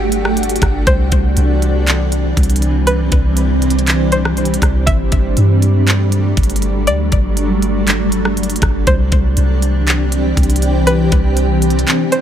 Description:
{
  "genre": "hip hop, atmospheric cloud-rap",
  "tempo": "120 BPM",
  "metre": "4/4",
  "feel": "half-time",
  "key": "unclear",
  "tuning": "A4 = 440 Hz",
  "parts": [
    { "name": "string-like resonator pluck", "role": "melody", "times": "0.0-12.2 s", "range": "B4 to E5", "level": "-21 LUFS", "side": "equal", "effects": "chorus, low-pass filter, ping-pong delay" },
    { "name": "granular cloud pad", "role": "sustained chords", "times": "0.0-12.2 s", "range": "E3 to G4", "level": "-17 LUFS", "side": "equal", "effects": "built-in reverb, sidechain pumping" },
    { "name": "soft 808-style bass", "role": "bass", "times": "0.0-11.8 s", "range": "G1 to G2", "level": "-15 LUFS", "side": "equal", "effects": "none" },
    { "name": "trap drum kit", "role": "drums", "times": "0.1-12.2 s", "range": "handclaps, hi-hat, kick drum, rim click", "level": "-17 LUFS", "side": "equal", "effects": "none" }
  ],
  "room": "digital ambience",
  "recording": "none",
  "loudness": "-12 LUFS",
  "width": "side -10 dB against mid",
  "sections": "0.0-12.2 A section",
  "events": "kick muted 11.9-12.2",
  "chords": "0.0 Gsus2; 0.9 Cmaj7; 4.9 Gsus2; 8.9 Cmaj7"
}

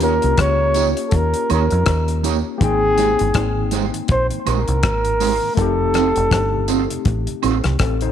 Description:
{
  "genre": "lovers rock reggae",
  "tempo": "81 BPM",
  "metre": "4/4",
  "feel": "swing 57% on 16ths",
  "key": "Ab major",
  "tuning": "A4 = 444 Hz",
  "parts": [
    { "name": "breathy flugelhorn", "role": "melody", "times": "0.0-7.0 s", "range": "G4 to Db5", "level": "-20 LUFS", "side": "equal", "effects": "tape echo" },
    { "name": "overdriven tine electric piano", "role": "accompaniment", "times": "0.0-8.1 s", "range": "A3 to G5", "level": "-25 LUFS", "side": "left 13 dB", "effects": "medium tremolo" },
    { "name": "mellow electric guitar", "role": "stabs", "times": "0.0-7.6 s", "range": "Ab3 to Db5", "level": "-24 LUFS", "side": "right 13 dB", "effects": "harmonic tremolo" },
    { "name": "deep dub fingered electric bass", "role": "bass", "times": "0.0-8.1 s", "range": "F1 to F2", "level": "-20 LUFS", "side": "equal", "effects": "none" },
    { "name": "damped 70s drum kit", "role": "drums", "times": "0.0-8.1 s", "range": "hi-hat, kick drum, rim click", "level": "-21 LUFS", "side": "left 2 dB", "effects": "none" },
    { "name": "tambourine and woodblock", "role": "percussion", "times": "0.0-7.6 s", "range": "none", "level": "-29 LUFS", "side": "right 12 dB", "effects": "none" },
    { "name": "mellow tonewheel organ", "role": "accompaniment", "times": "2.8-8.1 s", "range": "F2 to G4", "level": "-31 LUFS", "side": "right 10 dB", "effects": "none" }
  ],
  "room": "light reverb, studio reverb",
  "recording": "1960s-style stereo with parts hard left and right, tape saturation",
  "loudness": "-16 LUFS",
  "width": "side -9 dB against mid",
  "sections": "0.0-8.1 A section",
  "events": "none",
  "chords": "0.0 Eb7; 2.6 Abmaj7; 5.6 F7"
}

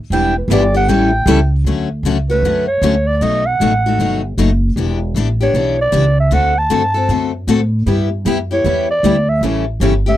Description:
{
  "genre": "acoustic string swing (jazz manouche)",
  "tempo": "155 BPM",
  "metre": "4/4",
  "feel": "swing 63% on 8ths",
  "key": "D major",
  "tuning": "A4 = 440 Hz",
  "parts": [
    { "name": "growling clarinet", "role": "melody", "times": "0.1-10.2 s", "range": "B4 to A5", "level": "-16 LUFS", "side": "right 2 dB", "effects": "none" },
    { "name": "picked steel-string acoustic guitar", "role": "accompaniment", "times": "0.1-10.2 s", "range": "B2 to A4", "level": "-18 LUFS", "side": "left 7 dB", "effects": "none" },
    { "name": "picked steel-string acoustic guitar", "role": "accompaniment", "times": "0.1-1.4, 7.9-9.9 s", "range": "E3 to B4", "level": "-19 LUFS", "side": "right 8 dB", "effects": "none" },
    { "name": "upright bass", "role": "bass", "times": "0.1-10.2 s", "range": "E1 to A2", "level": "-16 LUFS", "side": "equal", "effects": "none" }
  ],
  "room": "little or no reverb",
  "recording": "dry, close 1970s-style studio recording",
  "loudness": "-13 LUFS",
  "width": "side -12 dB against mid",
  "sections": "0.0-1.7 A section; 1.7-10.2 B section",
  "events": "clarinet solo 0.0-1.7",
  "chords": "0.1 Em7; 0.9 A7; 1.7 Dmaj7; 3.2 B7; 4.8 Em7; 6.3 D7; 7.9 G6; 9.4 A7"
}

